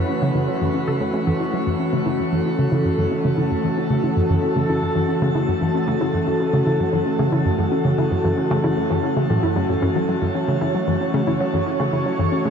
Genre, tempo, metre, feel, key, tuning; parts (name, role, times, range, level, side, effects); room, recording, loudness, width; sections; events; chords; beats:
ambient, sequencer-driven space music; 114 BPM; 4/4; straight; F# minor; A4 = 440 Hz
sweeping resonant pad; sustained chords; 0.0-12.5 s; E3 to C#5; -21 LUFS; equal; wide subtle chorus
warbly dusty pluck; arpeggios; 0.0-12.5 s; E3 to A4; -26 LUFS; left 2 dB; chorus, auto-pan, tape echo
tight sequenced synth; riff; 0.0-12.5 s; F#2 to C#4; -23 LUFS; equal; chorus, cassette tape, tape echo
wet shimmer reverb, RT60 9.3 s; -18 LUFS; side -7 dB against mid
0.0-12.5 A section
0.0 F#m7
0.09 0.61 1.14 | 1.67 2.19 2.72 3.25 | 3.77 4.30 4.82 5.35 | 5.88 6.40 6.93 7.46 | 7.98 8.51 9.04 9.56 | 10.09 10.61 11.14 11.67 | 12.19